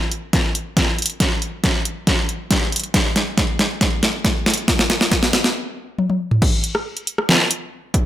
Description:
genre	dubstep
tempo	138 BPM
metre	4/4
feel	half-time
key	none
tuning	none
part	dubstep drum kit	drums	0.1-8.0 s	crash cymbal, hi-hat, rim click, snare drum, toms	-18 LUFS	equal	overdrive
part	electronic kick drum	drums	0.3-8.0 s	none	-20 LUFS	equal	overdrive
room	light reverb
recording	none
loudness	-16 LUFS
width	side -12 dB against mid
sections	0.0-6.4 A section; 6.4-8.1 B section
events	build-up 0.0-6.4; drum fill 0.0-5.5, 6.0-6.4; stop 5.5-6.4; drop 6.4-8.1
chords	none

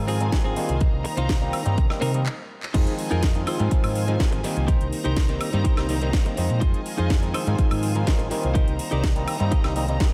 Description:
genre	filtered disco house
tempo	124 BPM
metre	4/4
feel	straight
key	C minor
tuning	A4 = 442 Hz
part	overdriven clav	accompaniment	0.0-10.1 s	Eb3 to Eb4	-31 LUFS	equal	phaser, sidechain pumping, low-pass filter
part	bright symphonic string section	sustained chords	0.0-10.1 s	Eb4 to Bb5	-36 LUFS	equal	sidechain pumping, low-pass filter
part	hollow-body short-scale fingered electric bass	bass	0.0-10.0 s	Ab1 to C3	-27 LUFS	equal	sidechain pumping, low-pass filter
part	direct-recorded clean electric guitar	riff	0.1-9.8 s	C4 to Eb5	-33 LUFS	equal	sidechain pumping, low-pass filter
part	house drum kit	drums	0.1-10.1 s	crash cymbal, handclaps, hi-hat, snare drum, woodblock	-35 LUFS	equal	sidechain pumping on hats, sidechain pumping on perc, sidechain pumping on cymbals
part	electronic kick drum	drums	0.3-10.1 s	none	-24 LUFS	equal	none
room	light reverb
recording	none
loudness	-23 LUFS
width	mono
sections	0.0-2.7 A section; 2.7-10.1 B section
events	drum fill 2.3-2.7; stop 2.3-2.7; band accent 2.6; drop 2.7-10.1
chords	0.0 Ab6; 0.8 Cm7; 2.7 Fm7; 3.5 Ab6; 4.7 Cm7; 6.6 Fm7; 7.3 Ab6; 8.6 Cm7

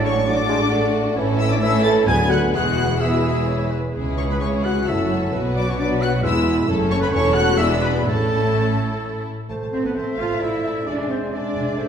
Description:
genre	quick classical-period movement for symphony orchestra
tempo	131 BPM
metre	3/4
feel	straight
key	A major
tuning	A4 = 439 Hz
part	rich studio violin section	melody	0.0-11.8 s	E5 to A6	-29 LUFS	left 3 dB	none
part	clear oboe	second line	0.0-11.9 s	A4 to A5	-30 LUFS	equal	none
part	silver concert flute	second line	0.0-11.9 s	A4 to A5	-29 LUFS	left 1 dB	none
part	warm clarinet	second line	0.0-11.9 s	F#4 to E5	-30 LUFS	left 2 dB	none
part	warm studio violin section	second line	0.0-11.9 s	B3 to F5	-30 LUFS	left 3 dB	none
part	mellow bassoon	accompaniment	0.0-11.9 s	D3 to A3	-27 LUFS	right 2 dB	none
part	warm studio viola section	accompaniment	0.0-11.9 s	F#3 to F4	-27 LUFS	right 1 dB	none
part	mellow French horn section	sustained chords	0.0-11.9 s	A3 to A4	-25 LUFS	left 2 dB	none
part	dark studio cello section	bass	0.0-11.9 s	C#2 to F4	-25 LUFS	right 1 dB	none
part	dark studio double bass section	bass	0.0-11.8 s	E1 to D2	-26 LUFS	right 1 dB	none
room	wet recital hall reverb, RT60 1.6 s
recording	heard from further back in the room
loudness	-18 LUFS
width	side -8 dB against mid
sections	0.0-9.5 A section; 9.5-11.9 B section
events	none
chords	0.0 D/A; 1.2 A; 2.1 Bm/D; 2.5 E; 3.9 C#m; 4.9 F#m7; 5.3 B5; 6.2 E; 6.7 F#m; 7.1 A/E; 7.6 E7; 8.1 A; 9.5 Am; 10.9 E7

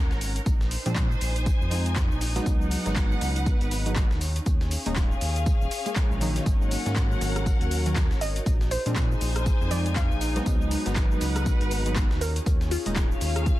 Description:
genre	deep house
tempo	120 BPM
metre	4/4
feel	swing 59% on 16ths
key	unclear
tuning	A4 = 436 Hz
part	warm analog keys	stabs	0.0-13.1 s	Eb3 to Ab4	-32 LUFS	equal	chorus, sidechain pumping, ping-pong delay
part	round analog bass	bass	0.0-13.5 s	Eb1 to Bb2	-28 LUFS	equal	sidechain pumping
part	dark studio string section	texture	0.0-13.6 s	Db4 to Ab5	-34 LUFS	equal	sidechain pumping
part	breakbeat sampler-style drum kit	drums	0.1-13.4 s	hi-hat, snare drum, tambourine	-42 LUFS	equal	none
part	deep house drum kit	drums	0.1-13.6 s	handclaps, hi-hat, rim click, shaker	-34 LUFS	left 1 dB	overdrive
part	electronic kick drum	drums	0.5-13.6 s	none	-24 LUFS	equal	none
part	warbly tape-like pad	sustained chords	6.8-13.6 s	Db4 to Db5	-38 LUFS	left 1 dB	chorus, built-in reverb, sidechain pumping
part	glassy wavetable pluck	melody	8.2-12.9 s	F4 to F5	-34 LUFS	equal	chorus, cassette tape, ping-pong delay
room	little or no reverb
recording	dense, heavily limited modern master, vinyl crackle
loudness	-23 LUFS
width	side -16 dB against mid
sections	0.0-13.6 A section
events	none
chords	0.5 Bb9sus4; 2.5 Db9sus4; 4.2 Eb9sus4; 6.5 Ab9sus4; 8.5 Bb9sus4; 10.5 Db9sus4; 12.2 Eb9sus4

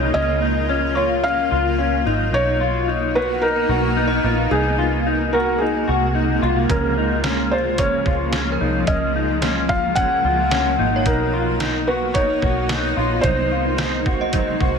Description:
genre	dream pop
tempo	110 BPM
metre	4/4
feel	straight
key	unclear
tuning	A4 = 440 Hz
part	felt-muted upright piano	melody	0.0-14.8 s	Ab4 to Gb5	-22 LUFS	equal	ping-pong delay
part	granular cloud pad	sustained chords	0.0-14.8 s	C3 to Gb4	-24 LUFS	equal	built-in reverb
part	mellow electric guitar	arpeggios	0.0-14.8 s	Db4 to Gb4	-23 LUFS	left 5 dB	ensemble chorus, ping-pong delay
part	vintage muted fingered electric bass	bass	0.0-14.8 s	Ab1 to Db2	-24 LUFS	right 1 dB	none
part	synth chime	texture	4.1-4.8, 8.5-14.8 s	Bb4 to Eb5	-32 LUFS	right 2 dB	ensemble chorus, tremolo, ping-pong delay
part	mellow electric guitar	accompaniment	6.7-14.8 s	C3 to C5	-28 LUFS	right 5 dB	tremolo, lush chorus
part	detuned 8-bit digital drum machine	drums	6.7-14.7 s	hi-hat, kick drum, snare drum	-24 LUFS	right 1 dB	none
room	moderate concert hall reverb, RT60 2.3 s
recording	none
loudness	-17 LUFS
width	side -6 dB against mid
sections	0.0-14.8 A section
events	none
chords	0.1 Gbmaj7/Db; 2.3 Cbmaj7; 4.5 Ab7/C; 6.7 Db6; 8.9 Gbmaj9/Db; 11.1 Cbmaj7; 13.2 Ab7/C

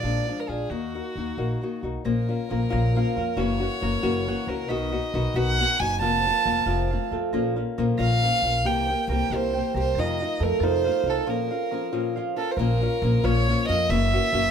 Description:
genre	mexican folk, mariachi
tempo	91 BPM (dotted quarters)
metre	6/8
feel	straight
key	Bb harmonic minor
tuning	A4 = 440 Hz
part	dark violin	melody	0.0-14.5 s	Gb4 to A5	-26 LUFS	right 2 dB	none
part	nylon-string guitar	accompaniment	0.0-14.5 s	F2 to G4	-27 LUFS	left 5 dB	none
part	upright bass	bass	0.0-14.5 s	F1 to F2	-27 LUFS	equal	none
part	concert harp	arpeggios	2.1-14.5 s	A4 to B6	-32 LUFS	right 8 dB	none
room	moderate small room reverb, RT60 0.5 s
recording	none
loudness	-22 LUFS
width	side -7 dB against mid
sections	0.0-2.1 A section; 2.1-12.6 B section; 12.6-14.5 B section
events	break 11.3-12.6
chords	0.0 Bb7; 0.7 Ebm; 2.1 Bbm; 3.4 Gb7; 4.7 B; 6.0 Fsus4; 6.7 F; 7.3 Bbm; 8.6 C7; 10.0 F7; 11.3 Bbmadd9; 12.6 Bbm; 13.9 Gb7

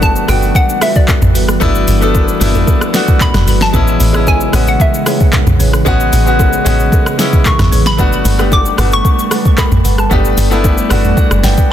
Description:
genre	amapiano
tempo	113 BPM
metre	4/4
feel	straight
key	unclear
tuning	A4 = 440 Hz
part	hollow square pluck	melody	0.0-10.2 s	D5 to D6	-18 LUFS	left 1 dB	chorus, ping-pong delay
part	bright concert grand piano	accompaniment	0.0-11.7 s	G#3 to G5	-17 LUFS	left 3 dB	none
part	glassy FM pad	sustained chords	0.0-11.7 s	C#3 to A4	-19 LUFS	right 1 dB	ensemble chorus, built-in reverb, sidechain pumping
part	deep log drum bass	bass	0.0-11.6 s	F#1 to B1	-13 LUFS	equal	none
part	smooth R&B drum kit	drums	0.0-11.7 s	handclaps, hi-hat, kick drum, rim click, shaker, snare drum, toms	-13 LUFS	equal	soft clipping on snare
part	bongos and congas	percussion	0.0-11.6 s	none	-24 LUFS	left 4 dB	none
part	marimba with medium mallets	stabs	0.3-11.5 s	F#4 to F#5	-23 LUFS	right 6 dB	ping-pong delay
room	little or no reverb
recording	dense, heavily limited modern master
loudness	-9 LUFS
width	side -10 dB against mid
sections	0.0-11.7 A section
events	grand piano fill 10.6-11.7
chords	0.0 Gmaj9; 3.7 Amaj9; 8.0 Gmaj9

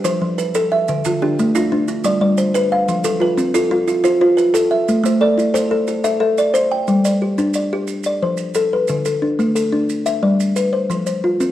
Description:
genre	southern african traditional, mbira-style interlocking cycle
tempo	120 BPM (dotted quarters)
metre	12/8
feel	straight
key	G mixolydian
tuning	A4 = 442 Hz
part	kalimba	arpeggios	0.0-11.5 s	D3 to E5	-16 LUFS	left 2 dB	none
part	kalimba	arpeggios	0.0-7.2 s	D3 to G5	-18 LUFS	right 3 dB	none
part	maracas	percussion	0.0-11.5 s	none	-32 LUFS	right 7 dB	none
room	moderate recital hall reverb, RT60 1.4 s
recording	worn, warbling old tape, cassette tape, warbly pitch drift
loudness	-15 LUFS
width	side -13 dB against mid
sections	0.0-6.9 A section; 6.9-11.5 B section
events	none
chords	0.0 F; 0.9 Dm; 1.9 G; 2.9 F; 4.9 Am; 6.9 G5; 7.9 F; 8.9 D5; 9.9 G; 10.9 F5

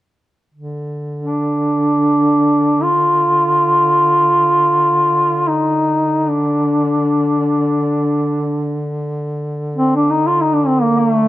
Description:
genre	caucasian folk, Caucasian lament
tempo	free time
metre	none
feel	none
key	D phrygian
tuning	A4 = 440 Hz
part	warm duduk	drone	0.5-11.3 s	D3	-22 LUFS	equal	none
part	mellow duduk	melody	1.2-11.3 s	A3 to F4	-13 LUFS	equal	none
room	light reverb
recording	close, detailed microphones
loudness	-13 LUFS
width	side -15 dB against mid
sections	0.5-11.3 A section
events	none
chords	none

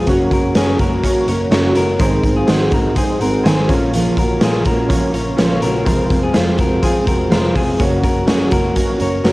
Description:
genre	jangly indie pop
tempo	124 BPM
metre	4/4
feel	straight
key	Bb minor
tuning	A4 = 440 Hz
part	fingerpicked steel-string acoustic guitar	accompaniment	0.0-9.3 s	F2 to Ab4	-19 LUFS	right 2 dB	cassette tape
part	warbly lo-fi synth keys	accompaniment	0.0-9.3 s	C4 to Bb5	-22 LUFS	right 1 dB	chorus, cassette tape
part	clean electric guitar	arpeggios	0.0-9.3 s	C4 to Db5	-21 LUFS	left 3 dB	cassette tape, analog delay
part	vintage muted picked electric bass	bass	0.0-9.3 s	F1 to Bb1	-23 LUFS	equal	none
part	phased string machine	sustained chords	0.1-9.3 s	Db3 to Db4	-30 LUFS	equal	none
part	raw garage drum kit	drums	0.1-9.3 s	hi-hat, kick drum, snare drum	-17 LUFS	equal	cassette tape
room	light reverb, small room ambience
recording	home recording on cassette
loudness	-13 LUFS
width	side -19 dB against mid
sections	0.0-9.3 A section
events	synth keys fill 3.0-3.9, 7.1-7.8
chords	0.1 Gb; 2.0 Ab; 3.7 Bbm; 5.9 Fm; 7.8 Gb

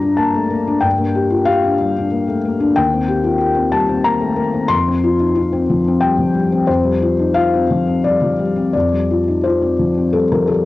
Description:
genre	neoclassical minimalist piano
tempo	85-94 BPM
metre	3/4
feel	rubato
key	unclear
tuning	A4 = 438 Hz
part	felt-muted upright piano	solo	0.0-10.7 s	Eb2 to C6	-14 LUFS	left 2 dB	none
room	moderate studio reverb, RT60 0.5 s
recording	home recording on cassette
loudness	-14 LUFS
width	side -16 dB against mid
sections	0.0-10.7 A section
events	none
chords	0.0 Gm7; 2.8 Eb6; 4.7 Fsus2

